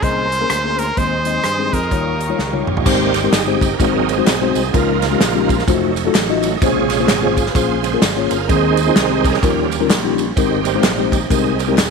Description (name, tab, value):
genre	uptempo gospel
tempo	128 BPM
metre	4/4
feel	swing 60% on 8ths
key	Ab major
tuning	A4 = 440 Hz
part	brilliant trumpet	melody	0.0-2.7 s	Bb4 to C5	-20 LUFS	right 1 dB	none
part	mellow tine electric piano	accompaniment	0.0-11.8 s	Ab2 to Eb5	-19 LUFS	left 11 dB	medium stereo tremolo
part	bright tonewheel organ	sustained chords	0.0-11.9 s	C3 to Eb5	-20 LUFS	right 11 dB	slow rotary speaker, chorus vibrato
part	warm studio string section	sustained chords	0.0-2.9 s	Db4 to Eb6	-29 LUFS	left 3 dB	none
part	fingered electric bass	bass	0.0-11.9 s	Eb1 to G2	-24 LUFS	right 1 dB	none
part	natural country drum kit	drums	0.0-11.9 s	crash cymbal, hi-hat, kick drum, ride cymbal, rim click, snare drum, toms	-19 LUFS	right 1 dB	none
part	tambourine and handclaps	percussion	2.9-11.9 s	none	-28 LUFS	left 1 dB	none
room	moderate echo chamber reverb, RT60 1.3 s, small room reverb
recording	1960s-style stereo with parts hard left and right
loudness	-14 LUFS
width	side -5 dB against mid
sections	0.0-2.9 A section; 2.9-11.9 B section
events	drum fill 2.4-2.9; tonewheel organ solo 2.9-11.9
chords	0.0 Bbm9; 1.0 Ab/Eb; 1.9 Eb9; 2.9 Abmaj7; 3.8 Ab7; 4.7 Db69; 5.7 F7b9; 6.6 Bbm9; 8.5 Ab/Eb; 9.4 Eb9; 10.4 Abmaj9